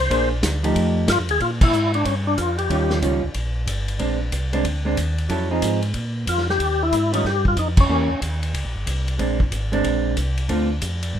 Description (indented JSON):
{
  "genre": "soul jazz organ trio",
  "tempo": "185 BPM",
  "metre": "4/4",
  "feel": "swing 64% on 8ths",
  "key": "Bb mixolydian",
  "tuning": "A4 = 440 Hz",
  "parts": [
    { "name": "overdriven tonewheel organ", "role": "melody", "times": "0.0-3.0, 6.3-8.2 s", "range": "Db4 to C5", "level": "-21 LUFS", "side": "left 3 dB", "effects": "slow rotary speaker, chorus vibrato" },
    { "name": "mellow tonewheel organ", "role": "bass", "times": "0.0-11.2 s", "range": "G1 to Bb2", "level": "-24 LUFS", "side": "equal", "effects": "slow rotary speaker" },
    { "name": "vintage drum kit", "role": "drums", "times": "0.0-11.2 s", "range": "crash cymbal, hi-hat, kick drum, ride cymbal, snare drum", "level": "-25 LUFS", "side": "equal", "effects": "none" },
    { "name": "vintage hollow-body jazz guitar", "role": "accompaniment", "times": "0.1-10.7 s", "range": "D3 to C5", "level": "-23 LUFS", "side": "right 3 dB", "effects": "none" }
  ],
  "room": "light reverb",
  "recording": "minimal, uncompressed stereo recording",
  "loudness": "-19 LUFS",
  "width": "side -9 dB against mid",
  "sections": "0.0-1.4 A section; 1.4-11.2 B section",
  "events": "tonewheel organ solo 0.0-1.4; band accent 1.6, 7.7",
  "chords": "0.1 Bb9; 0.8 F9; 1.4 Bb5; 2.7 Eb9; 4.0 Bb9; 5.3 Fm7; 5.9 Bb5; 6.6 Ebadd9; 7.9 Edim7; 9.2 Bb9; 10.5 Dm7"
}